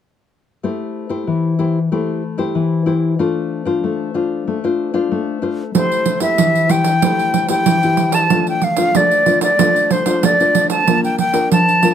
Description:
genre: samba and choro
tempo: 94 BPM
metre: 4/4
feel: straight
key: A minor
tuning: A4 = 439 Hz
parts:
  - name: nylon-string guitar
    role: accompaniment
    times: 0.6-11.9 s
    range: E3 to C5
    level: -18 LUFS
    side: left 4 dB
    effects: none
  - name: pandeiro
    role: percussion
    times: 5.7-11.9 s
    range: none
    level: -18 LUFS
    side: right 9 dB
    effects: none
  - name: silver concert flute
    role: melody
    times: 5.8-11.9 s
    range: C5 to A5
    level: -15 LUFS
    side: equal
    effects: none
room: light reverb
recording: close, detailed microphones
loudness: -14 LUFS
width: side -9 dB against mid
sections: 0.6-5.8 A section; 5.8-11.9 B section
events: none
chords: 0.6 Am7; 3.2 Dm7/A; 5.8 Am7; 8.3 Dm7/A; 10.9 Bb

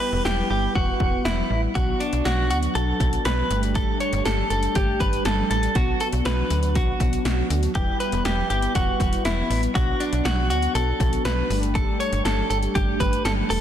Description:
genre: synth-pop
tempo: 120 BPM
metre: 4/4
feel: straight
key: B minor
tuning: A4 = 442 Hz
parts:
  - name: direct-recorded clean electric guitar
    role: melody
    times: 0.0-13.6 s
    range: D4 to C#5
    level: -25 LUFS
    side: right 1 dB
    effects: lush chorus, ping-pong delay
  - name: mellow synth brass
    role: accompaniment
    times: 0.0-13.6 s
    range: F#3 to B4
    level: -28 LUFS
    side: left 1 dB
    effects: chorus
  - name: slap-like FM bass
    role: bass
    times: 0.1-13.6 s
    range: E1 to D2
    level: -25 LUFS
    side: equal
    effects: none
  - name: 80s electronic pad drums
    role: drums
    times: 0.3-13.6 s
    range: hi-hat, kick drum, snare drum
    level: -26 LUFS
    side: equal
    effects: none
room: light reverb, digital ambience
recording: dense, heavily limited modern master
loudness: -20 LUFS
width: side -10 dB against mid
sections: 0.0-13.6 A section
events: none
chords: 0.0 Em; 1.8 Bm; 3.5 Gsus2; 5.8 Bm; 7.8 Em; 9.8 Bm; 11.5 Gsus2

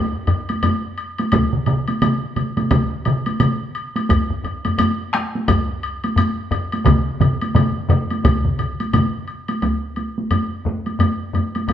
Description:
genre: japanese traditional, taiko drum ensemble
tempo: 87 BPM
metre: 4/4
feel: swing 60% on 16ths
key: none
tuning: none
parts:
  - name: taiko ensemble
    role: percussion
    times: 0.3-11.7 s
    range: none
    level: -22 LUFS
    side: left 2 dB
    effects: none
  - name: woodblock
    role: percussion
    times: 0.3-11.7 s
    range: none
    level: -26 LUFS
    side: left 4 dB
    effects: none
  - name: solo taiko drums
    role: percussion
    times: 0.5-11.7 s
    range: none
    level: -22 LUFS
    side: right 2 dB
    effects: none
  - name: taiko ensemble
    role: percussion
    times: 1.3-9.1 s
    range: none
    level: -20 LUFS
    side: right 1 dB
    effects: none
  - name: taiko ensemble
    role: percussion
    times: 1.3-9.8 s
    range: none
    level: -21 LUFS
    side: equal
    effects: none
room: wet large studio reverb, RT60 1.2 s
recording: band playing live in one room, nothing above 8.0 kHz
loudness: -17 LUFS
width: side -10 dB against mid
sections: 0.0-9.6 A section; 9.6-11.7 B section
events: none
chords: none

